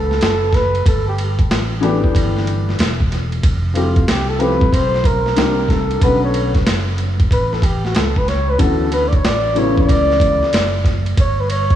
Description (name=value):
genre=hip hop, jazz-hop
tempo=93 BPM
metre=4/4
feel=swing 65% on 16ths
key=D major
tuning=A4 = 440 Hz
part: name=breathy flugelhorn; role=melody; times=0.0-11.8 s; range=F4 to D5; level=-19 LUFS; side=right 1 dB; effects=none
part: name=fretless electric bass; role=bass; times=0.0-11.8 s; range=E1 to D2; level=-20 LUFS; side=equal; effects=none
part: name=boom bap sampler-style drum kit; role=drums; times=0.1-11.8 s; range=hi-hat, kick drum, ride cymbal, snare drum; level=-18 LUFS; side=equal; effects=none
part: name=dark upright piano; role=accompaniment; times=1.8-10.5 s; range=C#3 to G4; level=-20 LUFS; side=left 4 dB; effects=lush chorus
room=moderate lush hall reverb, RT60 2.9 s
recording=dreamy mix soaked in reverb, small room ambience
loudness=-14 LUFS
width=side -11 dB against mid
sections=0.0-11.8 A section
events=flugelhorn solo 0.0-11.8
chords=0.0 Dmaj13 (rootless); 0.9 G69; 3.4 Fmaj9; 5.4 Cm7; 6.0 Bm7; 8.6 Dmaj13; 11.2 N.C.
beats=0.21 | 0.85 1.50 2.15 2.79 | 3.44 4.08 4.72 5.37 | 6.02 6.66 7.31 7.95 | 8.60 9.24 9.89 10.53 | 11.18